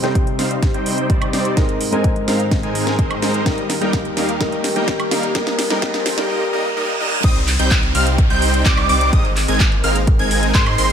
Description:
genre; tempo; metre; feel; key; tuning
EDM, festival progressive house; 127 BPM; 4/4; straight; C minor; A4 = 440 Hz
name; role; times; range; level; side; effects
felt-muted upright piano; accompaniment; 0.0-7.3 s; Ab2 to C5; -23 LUFS; left 1 dB; sidechain pumping, tape echo
lush unison pad; sustained chords; 0.0-10.9 s; Eb2 to Ab5; -28 LUFS; equal; chorus, phaser, sidechain pumping
supersaw chords; riff; 0.0-10.9 s; G3 to Ab5; -21 LUFS; equal; sidechain pumping, low-pass filter, tape echo
house drum kit; drums; 0.0-10.9 s; crash cymbal, handclaps, hi-hat, snare drum, woodblock; -23 LUFS; right 1 dB; small room ambience
riser, reverse cymbal and downlifter; sound effects; 0.0-10.9 s; none; -28 LUFS; right 2 dB; none
electronic kick drum; drums; 0.2-10.6 s; none; -17 LUFS; equal; small room ambience
plucky unison lead; arpeggios; 7.2-10.9 s; C6 to Ab6; -21 LUFS; right 1 dB; lush chorus, sidechain pumping, tape echo
saturated sub bass; bass; 7.2-10.9 s; Ab1 to Ab2; -20 LUFS; equal; sidechain pumping
room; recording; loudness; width
light reverb; high-pass filter; -15 LUFS; side -8 dB against mid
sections
0.0-7.2 A section; 7.2-10.9 B section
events
build-up 0.0-7.2; drum fill 0.0-6.3; filter sweep on supersaw synth 0.0-7.2; filter sweep 0.0-7.2; reverse cymbal 6.3-7.2; drop 7.2-10.9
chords
0.0 Cm; 1.6 Abadd9; 3.5 Eb; 5.4 Fm; 7.2 Cm; 9.1 Abadd9

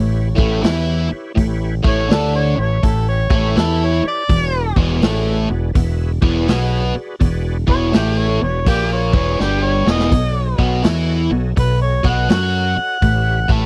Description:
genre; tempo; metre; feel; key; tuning
blues rock power trio and southern rock; 82 BPM; 4/4; swing 64% on 8ths; unclear; A4 = 438 Hz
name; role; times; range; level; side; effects
mellow harmonica; melody; 0.0-13.7 s; G4 to A5; -24 LUFS; equal; overdrive
overdriven tonewheel organ; sustained chords; 0.0-13.7 s; E4 to E5; -34 LUFS; equal; chorus vibrato, slow rotary speaker
biting overdriven guitar; riff; 0.0-13.7 s; E2 to F#4; -22 LUFS; equal; none
growling fingered electric bass; bass; 0.0-13.7 s; E1 to F#2; -21 LUFS; equal; overdrive
vintage drum kit; drums; 0.4-13.6 s; hi-hat, kick drum, snare drum; -18 LUFS; equal; none
room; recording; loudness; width
little or no reverb; dry, close 1970s-style studio recording; -17 LUFS; mono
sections
0.0-13.7 A section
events
drum fill 9.4-10.1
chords
0.0 A7; 4.3 E7; 10.1 B7; 13.0 A7

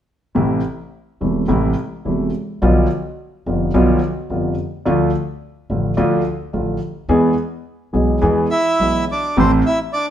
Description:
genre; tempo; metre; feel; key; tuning
tango; 107 BPM; 4/4; rubato; A minor; A4 = 440 Hz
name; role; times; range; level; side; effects
warm concert grand piano; accompaniment; 0.3-9.6 s; E1 to A4; -17 LUFS; equal; none
upright bass; bass; 0.4-9.6 s; E1 to E2; -22 LUFS; equal; none
bandoneon; melody; 8.5-10.1 s; C4 to E5; -17 LUFS; right 1 dB; none
room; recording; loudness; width
wet stone room reverb, RT60 1.0 s; band playing live in one room; -16 LUFS; side -10 dB against mid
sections
0.4-9.4 A section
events
none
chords
0.4 Am; 2.6 Bdim; 4.9 Dm; 7.1 E; 9.4 Am

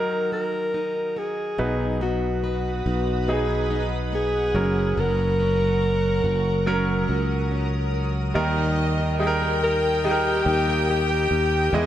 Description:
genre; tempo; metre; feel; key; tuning
pop; 71 BPM; 4/4; straight; unclear; A4 = 440 Hz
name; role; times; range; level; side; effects
warm alto saxophone; melody; 0.0-11.9 s; F#4 to A#4; -25 LUFS; left 1 dB; none
bright concert grand piano; accompaniment; 0.0-11.9 s; B2 to D#5; -28 LUFS; right 2 dB; none
picked plugged-in steel-string acoustic guitar; arpeggios; 0.0-11.9 s; B2 to B4; -31 LUFS; right 1 dB; none
shimmering ambient pad; sustained chords; 2.2-11.9 s; G#4 to D#6; -33 LUFS; equal; chorus, built-in reverb
sustaining fretless electric bass; bass; 1.6-11.9 s; F#1 to E2; -25 LUFS; equal; none
warm studio violin section; second line; 8.4-11.9 s; D#5 to G5; -29 LUFS; left 2 dB; none
room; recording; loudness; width
light reverb, studio reverb; dark, warm production; -20 LUFS; side -11 dB against mid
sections
0.0-8.4 A section; 8.4-11.9 B section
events
none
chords
0.0 D#m; 1.6 B; 4.6 F#; 8.4 D#

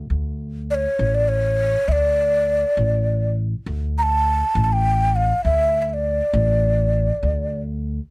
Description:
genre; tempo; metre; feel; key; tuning
Arabic maqam ensemble; 67 BPM (dotted quarters); 6/8; straight; D maqam suznak; A4 = 439 Hz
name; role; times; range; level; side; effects
upright bass; bass; 0.0-8.0 s; A1 to D2; -21 LUFS; equal; none
breathy mellow ney; melody; 0.7-7.6 s; C#5 to Bb5; -19 LUFS; equal; none
room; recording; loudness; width
light reverb; dry, close 1970s-style studio recording; -17 LUFS; side -25 dB against mid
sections
0.1-8.1 A section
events
none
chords
none

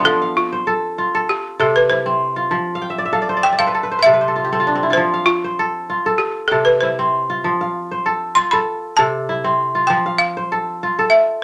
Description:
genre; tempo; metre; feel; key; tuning
west african traditional, West African string and xylophone music; 98 BPM; 4/4; straight; F lydian; A4 = 440 Hz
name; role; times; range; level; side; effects
kora; arpeggios; 0.0-11.4 s; C3 to G5; -20 LUFS; equal; none
balafon; melody; 0.1-11.4 s; F4 to C6; -18 LUFS; equal; none
room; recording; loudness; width
moderate studio reverb, RT60 0.6 s; none; -18 LUFS; mono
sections
0.0-11.4 A section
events
balafon solo 0.0-11.4; kora fill 2.7-5.0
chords
0.0 F; 1.3 C; 2.5 F; 3.7 N.C.; 5.0 F; 6.2 C; 7.4 F; 8.7 C; 9.9 F

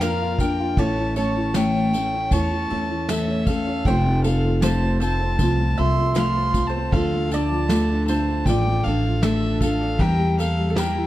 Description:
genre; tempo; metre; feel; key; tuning
acoustic folk duo or small band; 78 BPM; 4/4; straight; D minor; A4 = 440 Hz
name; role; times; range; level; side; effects
warm fiddle; melody; 0.0-11.1 s; E5 to C6; -27 LUFS; left 1 dB; plate reverb
mandolin; second line; 0.0-11.1 s; A4 to F5; -31 LUFS; right 3 dB; none
picked steel-string acoustic guitar; accompaniment; 0.0-11.1 s; A2 to Bb4; -25 LUFS; left 2 dB; none
warm upright piano; arpeggios; 0.0-11.1 s; E3 to F4; -29 LUFS; right 4 dB; none
upright bass; bass; 0.0-11.1 s; F1 to F2; -23 LUFS; equal; none
soft brush drum kit; drums; 0.0-10.9 s; kick drum, ride cymbal, snare drum; -26 LUFS; equal; none
tambourine; percussion; 0.0-11.0 s; none; -37 LUFS; left 4 dB; none
room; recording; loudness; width
light reverb; dark, warm production; -19 LUFS; side -15 dB against mid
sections
0.0-11.1 A section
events
none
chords
0.0 Bb; 0.8 A; 3.9 F; 6.9 Dm; 10.0 Edim

